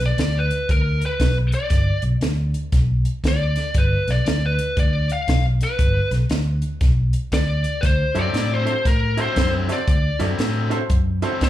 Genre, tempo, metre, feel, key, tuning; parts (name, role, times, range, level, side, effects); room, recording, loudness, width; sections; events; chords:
electric blues shuffle; 118 BPM; 4/4; swing 63% on 8ths; G major; A4 = 442 Hz
fingered electric bass; bass; 0.0-11.5 s; G1 to A2; -20 LUFS; equal
compact cocktail drum kit; drums; 0.0-11.5 s; hi-hat, kick drum, snare drum; -22 LUFS; equal
biting lead guitar; melody; 0.1-11.5 s; Bb4 to F5; -24 LUFS; left 2 dB; overdrive, slapback echo
bright upright piano; accompaniment; 8.1-11.3 s; E4 to D5; -28 LUFS; right 7 dB; slapback echo
biting overdriven guitar; riff; 8.2-11.5 s; D3 to E4; -27 LUFS; left 4 dB; slapback echo
studio reverb; live gig heard through the venue's PA, club reverb; -18 LUFS; side -13 dB against mid
0.0-11.5 A section
0.0 G (rootless); 7.8 D9